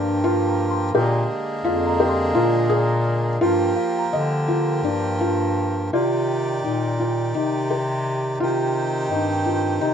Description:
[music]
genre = contemporary instrumental, chamber music in an uneven meter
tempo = 170 BPM (eighths)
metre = 7/8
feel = straight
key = unclear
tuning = A4 = 440 Hz
[part]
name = hand-pumped harmonium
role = sustained chords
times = 0.0-9.9 s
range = D3 to D5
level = -26 LUFS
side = right 1 dB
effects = none
[part]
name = felt-muted upright piano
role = arpeggios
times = 0.0-9.9 s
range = D4 to Eb5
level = -23 LUFS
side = equal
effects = none
[part]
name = clear bass clarinet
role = bass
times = 0.0-9.9 s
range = F2 to D3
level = -23 LUFS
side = left 1 dB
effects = none
[part]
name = small celesta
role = texture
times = 0.2-6.7 s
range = D5 to C6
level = -30 LUFS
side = left 2 dB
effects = none
[sound]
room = little or no reverb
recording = close, detailed microphones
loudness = -19 LUFS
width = side -8 dB against mid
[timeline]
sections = 0.0-5.9 A section; 5.9-9.9 B section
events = none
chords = 0.0 Gm7; 0.9 Bb7; 3.4 Gm7; 5.9 Ebmaj7; 8.4 Cm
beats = 0.24 0.59 | 0.95 1.30 1.65 2.00 2.35 2.70 3.06 | 3.41 3.77 4.12 4.48 4.84 5.21 5.57 | 5.93 6.29 6.64 7.00 7.35 7.71 8.06 | 8.41 8.76 9.11 9.46 9.81

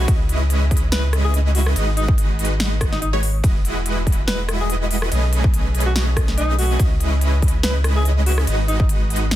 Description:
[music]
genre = future bass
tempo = 143 BPM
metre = 4/4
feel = swing 55% on 16ths, half-time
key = unclear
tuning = A4 = 440 Hz
[part]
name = mellow alto saxophone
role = melody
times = 0.0-8.9 s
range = D#4 to B4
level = -29 LUFS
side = equal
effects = sidechain pumping, dub echo
[part]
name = wide unison pluck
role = arpeggios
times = 0.0-9.4 s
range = C#5 to D#5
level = -33 LUFS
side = equal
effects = sidechain pumping
[part]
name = dense compressed supersaw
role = riff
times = 0.0-9.4 s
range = G#3 to D#5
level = -25 LUFS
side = right 2 dB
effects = sidechain pumping
[part]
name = saturated sub bass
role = bass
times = 0.0-9.4 s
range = E1 to C#2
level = -19 LUFS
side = equal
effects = sidechain pumping
[part]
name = big-room dance drum kit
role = drums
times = 0.1-9.4 s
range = hi-hat, ride cymbal, rim click, snare drum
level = -26 LUFS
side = equal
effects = overdrive
[part]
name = electronic kick drum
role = drums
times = 0.1-8.9 s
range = none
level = -18 LUFS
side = equal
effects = overdrive
[sound]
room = digital ambience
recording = dense, heavily limited modern master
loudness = -16 LUFS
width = side -13 dB against mid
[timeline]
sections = 0.0-9.4 A section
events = none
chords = 0.1 C#m9; 1.8 G#m7; 3.4 Emaj9; 5.1 B13; 6.8 C#m9; 8.5 G#m7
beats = | 0.08 0.50 0.92 1.34 | 1.76 2.18 2.60 3.02 | 3.44 3.86 4.28 4.70 | 5.12 5.54 5.96 6.37 | 6.79 7.21 7.63 8.05 | 8.47 8.89 9.31

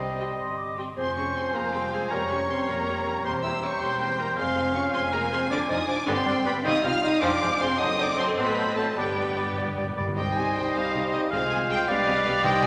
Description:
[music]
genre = quick classical-period movement for symphony orchestra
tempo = 105 BPM (dotted quarters)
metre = 6/8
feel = rubato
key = F minor, C minor from 5.5 s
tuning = A4 = 440 Hz
[part]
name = clear oboe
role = second line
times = 0.0-12.7 s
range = C5 to F5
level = -32 LUFS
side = equal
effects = none
[part]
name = dark clarinet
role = second line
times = 0.0-12.7 s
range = C4 to F5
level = -38 LUFS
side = equal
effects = none
[part]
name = mellow hollow concert flute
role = second line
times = 0.0-12.7 s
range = Eb5 to D6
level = -37 LUFS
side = equal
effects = none
[part]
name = rich chamber violin section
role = second line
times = 0.0-12.7 s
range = C4 to Ab5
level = -37 LUFS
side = equal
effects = none
[part]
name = warm bassoon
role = accompaniment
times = 0.0-12.7 s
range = F3 to Ab3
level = -36 LUFS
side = equal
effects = none
[part]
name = mellow French horn section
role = sustained chords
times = 0.0-12.7 s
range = C3 to F4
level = -34 LUFS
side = equal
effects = none
[part]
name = rich chamber double bass section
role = bass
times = 0.0-12.7 s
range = E1 to C2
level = -42 LUFS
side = equal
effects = none
[part]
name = warm chamber cello section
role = bass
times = 0.0-12.7 s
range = E2 to C3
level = -40 LUFS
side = equal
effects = none
[part]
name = rich chamber violin section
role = melody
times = 0.2-12.7 s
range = Eb5 to F6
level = -33 LUFS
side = equal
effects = none
[part]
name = clear studio viola section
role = accompaniment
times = 0.2-12.7 s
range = D3 to A4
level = -35 LUFS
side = equal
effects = none
[part]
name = timpani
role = percussion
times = 9.0-12.7 s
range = G2 to C3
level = -37 LUFS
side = equal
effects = none
[part]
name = warm trumpet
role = stabs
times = 10.2-12.7 s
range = B4 to C5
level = -36 LUFS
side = equal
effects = none
[sound]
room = wet scoring stage reverb, RT60 1.9 s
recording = none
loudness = -26 LUFS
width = mono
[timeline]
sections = 1.0-10.2 A section; 10.2-12.7 B section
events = timpani fill 9.0-10.2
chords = 0.0 Cm; 1.0 Fm; 2.1 Gm7b5/F; 3.2 C7/E; 4.4 Fm; 5.5 Ddim; 6.1 G; 6.6 Cm; 7.2 Fm; 7.8 F#dim7; 9.0 G; 10.2 Cm; 11.3 Fm/C; 11.9 G7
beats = 0.38 | 0.97 1.54 | 2.11 2.68 | 3.25 3.81 | 4.37 4.94 | 5.51 6.07 | 6.64 7.22 | 7.80 8.38 | 8.97 9.57 | 10.17 10.75 | 11.32 11.88 | 12.44

